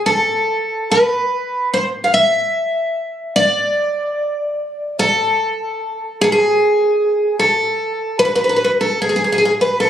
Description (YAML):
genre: fado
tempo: 74 BPM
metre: 4/4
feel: rubato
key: unclear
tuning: A4 = 442 Hz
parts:
  - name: picked twelve-string acoustic guitar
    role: solo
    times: 0.1-9.9 s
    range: G#4 to F5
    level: -14 LUFS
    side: equal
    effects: none
room: light reverb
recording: recorded on a phone in the room, club reverb, compression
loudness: -14 LUFS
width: side -10 dB against mid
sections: 0.0-9.9 A section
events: none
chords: none